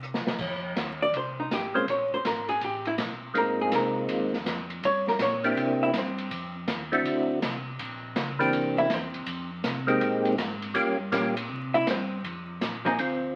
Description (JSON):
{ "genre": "soul jazz organ trio", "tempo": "162 BPM", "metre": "4/4", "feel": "swing 66% on 8ths", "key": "F dorian", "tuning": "A4 = 440 Hz", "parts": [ { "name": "mellow tonewheel organ", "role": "bass", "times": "0.0-13.3 s", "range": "Ab1 to C3", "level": "-40 LUFS", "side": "equal", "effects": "slow rotary speaker" }, { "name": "open jazz drum kit", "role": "drums", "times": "0.0-13.1 s", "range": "crash cymbal, hi-hat, kick drum, ride cymbal, snare drum", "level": "-35 LUFS", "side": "equal", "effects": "none" }, { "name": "archtop guitar, miked and amplified", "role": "accompaniment", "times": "1.0-6.5, 8.8-9.5, 11.7-13.0 s", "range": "F3 to E5", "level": "-29 LUFS", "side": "equal", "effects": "none" }, { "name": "percussive tonewheel organ", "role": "melody", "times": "1.7-13.4 s", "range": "E3 to G4", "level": "-28 LUFS", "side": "equal", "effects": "slow rotary speaker" } ], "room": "wet club reverb, RT60 0.8 s", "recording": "very old 78 rpm record, vinyl crackle", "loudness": "-28 LUFS", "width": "mono", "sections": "0.4-12.2 A section; 12.2-13.4 B section", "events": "drum fill 0.0-0.4; hollow-body jazz guitar solo 0.4-12.2", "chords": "0.4 Fm7; 1.9 Abadd9; 2.6 Asus2; 3.3 Ab69; 4.8 Gm; 6.3 F5; 7.0 D7; 7.8 Gm; 8.5 C7; 9.3 Fm11; 10.8 Gm7b5; 11.5 C; 12.2 F5", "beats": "0.02 | 0.39 0.76 1.13 1.50 | 1.87 2.24 2.61 2.98 | 3.35 3.72 4.09 4.46 | 4.83 5.20 5.57 5.94 | 6.31 6.68 7.05 7.42 | 7.79 8.16 8.53 8.90 | 9.27 9.64 10.01 10.38 | 10.76 11.13 11.50 11.87 | 12.24 12.62 12.99" }